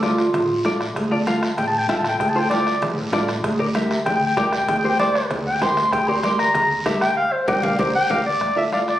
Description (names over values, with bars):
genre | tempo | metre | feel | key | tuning
latin, cumbia | 193 BPM | 4/4 | straight | D minor | A4 = 440 Hz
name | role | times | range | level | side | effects
dark clarinet | melody | 0.0-9.0 s | F4 to C6 | -20 LUFS | equal | none
clean electric guitar | accompaniment | 0.0-8.9 s | F4 to F5 | -24 LUFS | left 1 dB | wide subtle chorus
upright bass | bass | 0.0-8.9 s | A1 to D2 | -26 LUFS | equal | none
bombo | percussion | 0.0-9.0 s | none | -30 LUFS | equal | none
congas | percussion | 0.0-8.9 s | none | -30 LUFS | equal | none
guiro | percussion | 0.0-9.0 s | none | -35 LUFS | right 2 dB | none
cowbell and timbales | percussion | 0.3-8.2 s | none | -31 LUFS | right 2 dB | none
room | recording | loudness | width
moderate plate reverb, RT60 2.9 s | recorded on a phone in the room, club reverb, compression | -18 LUFS | side -13 dB against mid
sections
0.0-8.4 A section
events
clarinet solo 0.0-8.4; drum fill 7.2-8.4; band accent 7.2-8.4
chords
0.0 Dm; 3.4 Gm/D; 8.4 Dm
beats
0.03 0.34 0.65 | 0.96 1.27 1.58 1.89 | 2.20 2.51 2.82 3.13 | 3.44 3.75 4.06 4.38 | 4.68 5.00 5.31 5.62 | 5.93 6.24 6.55 6.86 | 7.17 7.48 7.79 8.10 | 8.41 8.72